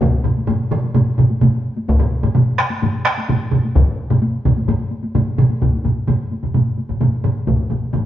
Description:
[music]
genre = japanese traditional, taiko drum ensemble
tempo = 129 BPM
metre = 4/4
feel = straight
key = none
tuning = none
[part]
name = taiko ensemble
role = percussion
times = 0.0-8.0 s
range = none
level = -25 LUFS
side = left 2 dB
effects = none
[part]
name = taiko ensemble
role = percussion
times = 0.0-8.1 s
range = none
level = -22 LUFS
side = left 2 dB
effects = none
[part]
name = taiko ensemble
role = percussion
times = 0.0-8.0 s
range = none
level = -17 LUFS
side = right 2 dB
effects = none
[part]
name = taiko ensemble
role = percussion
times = 0.0-7.6 s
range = none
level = -19 LUFS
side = left 1 dB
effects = none
[sound]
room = wet stone room reverb, RT60 1.4 s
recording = band playing live in one room, nothing above 7.5 kHz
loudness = -15 LUFS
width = side -12 dB against mid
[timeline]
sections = 0.0-5.6 A section; 5.6-8.1 B section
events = none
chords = none

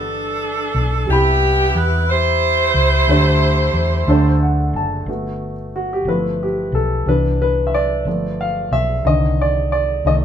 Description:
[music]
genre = slow gospel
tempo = 60 BPM (dotted quarters)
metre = 6/8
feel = straight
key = G major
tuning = A4 = 440 Hz
[part]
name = edgy saxophone section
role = melody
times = 0.0-4.4 s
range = B3 to C5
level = -17 LUFS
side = right 1 dB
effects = none
[part]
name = warm baby grand piano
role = accompaniment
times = 0.0-10.2 s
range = C3 to B5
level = -19 LUFS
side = equal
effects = none
[part]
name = hollow-body short-scale fingered electric bass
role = bass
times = 0.0-10.2 s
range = F#1 to E2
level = -19 LUFS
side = equal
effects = none
[sound]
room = wet studio reverb, RT60 0.8 s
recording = band playing live in one room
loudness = -15 LUFS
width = side -9 dB against mid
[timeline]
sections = 0.0-5.1 A section; 5.1-10.2 B section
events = grand piano fill 4.1-5.1; grand piano solo 5.1-10.2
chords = 0.0 Em7; 1.1 Cmaj7; 3.1 D7sus4; 4.1 D7; 5.1 Gmaj7; 6.1 G13; 7.1 Cmaj7; 8.1 G7; 9.1 Cmadd9

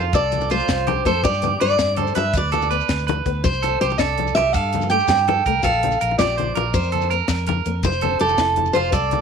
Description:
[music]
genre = highlife guitar band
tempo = 109 BPM (dotted quarters)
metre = 12/8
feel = straight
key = F major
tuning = A4 = 440 Hz
[part]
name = nylon-string guitar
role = accompaniment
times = 0.0-8.8 s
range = A3 to F4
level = -30 LUFS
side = left 14 dB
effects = none
[part]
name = electric guitar at the edge of break-up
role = arpeggios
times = 0.0-9.2 s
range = F4 to C5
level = -24 LUFS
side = right 14 dB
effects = tape echo
[part]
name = fingered electric bass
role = bass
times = 0.0-9.2 s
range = F1 to G2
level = -25 LUFS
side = equal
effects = none
[part]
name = picked steel-string acoustic guitar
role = melody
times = 0.1-9.2 s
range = A4 to G5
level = -20 LUFS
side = equal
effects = none
[part]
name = tight funk drum kit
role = drums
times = 0.1-9.2 s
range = hi-hat, kick drum, snare drum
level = -26 LUFS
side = equal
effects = none
[part]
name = shekere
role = percussion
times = 0.1-9.2 s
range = none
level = -30 LUFS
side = left 4 dB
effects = none
[part]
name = congas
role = percussion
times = 0.2-9.2 s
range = none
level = -28 LUFS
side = left 11 dB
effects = none
[sound]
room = little or no reverb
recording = 1960s-style stereo with parts hard left and right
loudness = -17 LUFS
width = side -6 dB against mid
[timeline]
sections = 0.0-9.2 A section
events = none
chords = 0.0 F; 1.2 G; 3.4 Csus2; 5.6 Bb; 7.8 Fmaj7

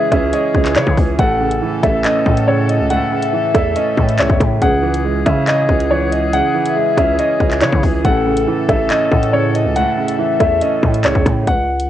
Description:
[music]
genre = hip hop, drill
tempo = 140 BPM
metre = 4/4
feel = half-time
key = unclear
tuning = A4 = 440 Hz
[part]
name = hollow clarinet-like synth lead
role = second line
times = 0.0-11.4 s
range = G#4 to F#5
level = -23 LUFS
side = left 9 dB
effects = chorus, phaser, analog delay
[part]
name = warm concert grand piano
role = accompaniment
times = 0.0-11.5 s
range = A2 to C#5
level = -19 LUFS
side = right 7 dB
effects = low-pass filter
[part]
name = clear woodwind section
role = sustained chords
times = 0.0-11.4 s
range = E3 to A4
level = -25 LUFS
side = left 2 dB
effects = none
[part]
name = dark concert grand piano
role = melody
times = 0.1-11.9 s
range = C#5 to F#5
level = -18 LUFS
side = left 1 dB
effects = low-pass filter, cassette tape
[part]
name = growling 808-style bass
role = bass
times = 0.1-11.9 s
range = A1 to C#3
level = -19 LUFS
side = left 1 dB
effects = none
[part]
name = drill drum kit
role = drums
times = 0.1-11.9 s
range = handclaps, hi-hat, kick drum, rim click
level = -18 LUFS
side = left 1 dB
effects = cassette tape
[sound]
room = light reverb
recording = home recording on cassette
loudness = -13 LUFS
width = side -12 dB against mid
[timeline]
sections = 0.0-11.5 A section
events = none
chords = 0.0 C#m; 1.2 A; 4.6 C#m; 8.0 A

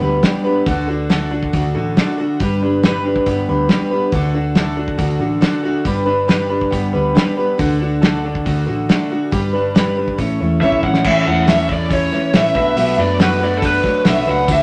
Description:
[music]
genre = folk rock and heartland rock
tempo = 139 BPM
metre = 4/4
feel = straight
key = D major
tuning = A4 = 442 Hz
[part]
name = picked twelve-string acoustic guitar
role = accompaniment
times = 0.0-14.6 s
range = A2 to D5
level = -22 LUFS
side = equal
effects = none
[part]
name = electric guitar through a small old amp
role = riff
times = 0.0-14.6 s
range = A2 to B4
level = -25 LUFS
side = equal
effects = none
[part]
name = hollow-body short-scale picked electric bass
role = bass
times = 0.0-14.6 s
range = G1 to F#2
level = -24 LUFS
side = equal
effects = none
[part]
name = cloth-damped thuddy drum kit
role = drums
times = 0.2-14.6 s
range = crash cymbal, hi-hat, kick drum, snare drum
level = -20 LUFS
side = equal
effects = none
[part]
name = lead guitar through a small cranked amp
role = melody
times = 10.6-14.6 s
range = A4 to F#5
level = -20 LUFS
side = equal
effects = overdrive
[part]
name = tambourine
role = percussion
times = 14.5 s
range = none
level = -36 LUFS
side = equal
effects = none
[sound]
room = moderate studio reverb, RT60 0.7 s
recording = none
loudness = -16 LUFS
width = mono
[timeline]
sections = 0.0-11.0 A section; 11.0-14.6 B section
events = drum fill 10.6-11.0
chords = 0.0 G; 0.7 D; 2.4 G; 4.1 D; 5.9 G; 7.6 D; 9.3 G; 10.2 A; 12.6 Bm7

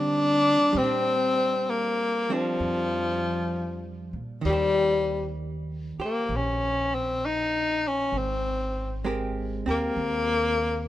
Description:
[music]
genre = jazz ballad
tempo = 65 BPM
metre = 4/4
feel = swing 67% on 8ths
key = Bb major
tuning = A4 = 440 Hz
[part]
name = breathy tenor saxophone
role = melody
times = 0.0-10.9 s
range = F3 to Eb4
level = -24 LUFS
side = left 2 dB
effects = none
[part]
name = archtop guitar, miked and amplified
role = accompaniment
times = 0.0-10.9 s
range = Eb3 to C5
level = -32 LUFS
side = right 3 dB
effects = none
[part]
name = upright bass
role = bass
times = 0.0-10.9 s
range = Ab1 to D3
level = -33 LUFS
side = equal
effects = none
[sound]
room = light reverb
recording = minimal, uncompressed stereo recording, lossy compression artefacts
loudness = -24 LUFS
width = side -14 dB against mid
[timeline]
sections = 0.7-10.9 A section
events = none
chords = 0.0 Bb69 (rootless); 0.7 Bb69; 4.4 Eb6; 8.1 Abmaj9

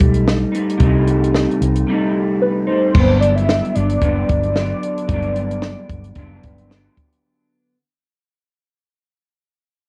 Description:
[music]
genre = indie pop, bedroom pop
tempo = 112 BPM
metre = 4/4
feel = swing 55% on 16ths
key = G major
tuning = A4 = 441 Hz
[part]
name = electric guitar through a small old amp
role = accompaniment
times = 0.0-7.8 s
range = G2 to Eb4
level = -21 LUFS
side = equal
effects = analog chorus, vibrato effect, low-pass filter
[part]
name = vintage muted fingered electric bass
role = bass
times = 0.0-6.9 s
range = F#1 to C2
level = -21 LUFS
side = equal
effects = transformer saturation
[part]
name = compact cocktail drum kit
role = drums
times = 0.0-7.2 s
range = crash cymbal, hi-hat, kick drum, snare drum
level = -21 LUFS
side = equal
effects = none
[part]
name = soft octave-layered synth lead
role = melody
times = 2.4-6.7 s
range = B4 to E5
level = -23 LUFS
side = equal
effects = phaser, analog chorus, cassette tape
[sound]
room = light reverb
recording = home recording on cassette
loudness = -17 LUFS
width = mono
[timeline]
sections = 0.0-2.9 A section; 2.9-7.2 B section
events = fade-out 2.9-7.2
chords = 0.0 Cm6; 2.9 Gmaj7

